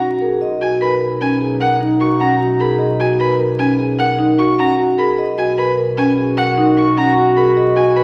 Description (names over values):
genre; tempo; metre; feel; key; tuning
classical, minimalist pattern music; 151 BPM; 6/4; straight; B major; A4 = 440 Hz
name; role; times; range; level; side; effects
vibraphone with soft mallets; melody; 0.0-8.0 s; G#4 to F#5; -22 LUFS; equal; none
mellow clarinet; second line; 0.0-8.0 s; D#4 to F#4; -26 LUFS; equal; none
marimba with soft mallets; arpeggios; 0.0-8.0 s; C#4 to B4; -18 LUFS; equal; none
warm double bass; bass; 0.0-8.0 s; B1; -26 LUFS; equal; none
rich violin; arpeggios; 0.6-8.0 s; F#5 to C#6; -25 LUFS; equal; none
room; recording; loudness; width
wet scoring stage reverb, RT60 1.6 s; vinyl crackle; -15 LUFS; mono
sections
0.0-8.0 A section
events
none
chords
0.0 Bmaj9